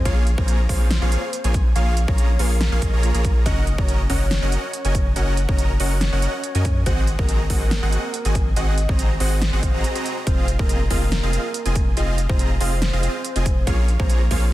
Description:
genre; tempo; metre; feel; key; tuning
future bass; 141 BPM; 4/4; half-time; Bb minor; A4 = 440 Hz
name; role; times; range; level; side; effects
soft octave-layered synth lead; melody; 0.0-14.5 s; Bb4 to F5; -30 LUFS; left 1 dB; chorus, sidechain pumping, tape echo
saturated sub bass; bass; 0.0-14.5 s; F1 to Gb2; -21 LUFS; equal; sidechain pumping
supersaw chords; riff; 0.1-14.4 s; Bb3 to Bb5; -26 LUFS; right 1 dB; sidechain pumping
big-room dance drum kit; drums; 0.1-14.4 s; hi-hat, snare drum; -28 LUFS; right 1 dB; none
electronic kick drum; drums; 0.1-14.4 s; none; -21 LUFS; equal; none
room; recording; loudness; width
digital ambience; dense, heavily limited modern master; -18 LUFS; side -16 dB against mid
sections
0.0-14.5 A section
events
break 9.8-10.3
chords
0.1 Bbm7; 3.5 Gb6; 6.9 Ab7; 10.3 Fm7; 13.7 Bbm7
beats
| 0.05 0.48 0.91 1.33 | 1.76 2.18 2.61 3.03 | 3.46 3.88 4.31 4.74 | 5.16 5.59 6.01 6.44 | 6.86 7.29 7.71 8.14 | 8.56 8.99 9.42 9.84 | 10.27 10.69 11.12 11.54 | 11.97 12.39 12.82 13.25 | 13.67 14.10 14.52

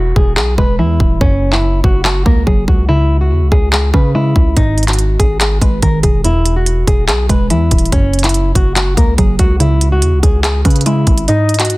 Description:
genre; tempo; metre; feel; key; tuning
hip hop, trap; 143 BPM; 4/4; half-time; unclear; A4 = 440 Hz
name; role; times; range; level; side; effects
nylon-string guitar; melody; 0.0-11.8 s; C#4 to B4; -18 LUFS; equal; low-pass filter, digital delay
mallet-like synth pluck; accompaniment; 0.0-11.8 s; E2 to C#4; -18 LUFS; right 1 dB; chorus, low-pass filter
distorted 808-style bass; bass; 0.0-11.3 s; D#1 to C#3; -15 LUFS; equal; distortion
downlifter; sound effects; 0.0-1.2 s; none; -40 LUFS; equal; none
trap drum kit; drums; 0.2-11.8 s; handclaps, hi-hat, kick drum; -13 LUFS; equal; none
gliding portamento lead; second line; 11.3-11.7 s; D#5; -19 LUFS; left 4 dB; chorus, digital delay
room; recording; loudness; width
little or no reverb; dense, heavily limited modern master; -10 LUFS; side -20 dB against mid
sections
0.0-11.8 A section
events
break 0.0-4.6; kick muted 11.3-11.8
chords
0.0 E; 1.2 F#; 2.9 C#m; 4.6 G#5; 6.2 E; 7.9 F#; 9.6 C#m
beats
0.37 0.79 | 1.21 1.63 2.05 2.47 | 2.89 3.31 3.73 4.15 | 4.57 4.99 5.41 5.83 | 6.25 6.67 7.08 7.50 | 7.92 8.34 8.76 9.18 | 9.60 10.02 10.44 10.86 | 11.28 11.70

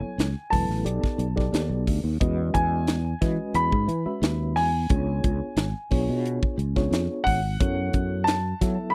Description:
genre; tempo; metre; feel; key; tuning
electric jazz fusion; 89 BPM; 4/4; straight; unclear; A4 = 440 Hz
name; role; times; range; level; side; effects
dark concert grand piano; melody; 0.0-8.9 s; F#5 to B5; -31 LUFS; equal; none
mellow reed electric piano; accompaniment; 0.0-8.9 s; F#3 to E5; -33 LUFS; equal; fast tremolo
sustaining fretless electric bass; bass; 0.2-8.8 s; E1 to F#3; -28 LUFS; equal; analog chorus
crisp fusion drum kit; drums; 0.2-8.8 s; hi-hat, kick drum, snare drum; -28 LUFS; equal; none
room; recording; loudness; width
little or no reverb; dry, close 1970s-style studio recording; -25 LUFS; mono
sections
0.0-8.9 A section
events
none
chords
0.0 F#m9; 0.9 B7alt; 2.2 Emaj9; 4.9 C#7b9; 7.6 F#m7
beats
0.19 0.86 1.54 | 2.21 2.88 3.56 4.23 | 4.90 5.58 6.25 6.93 | 7.60 8.28

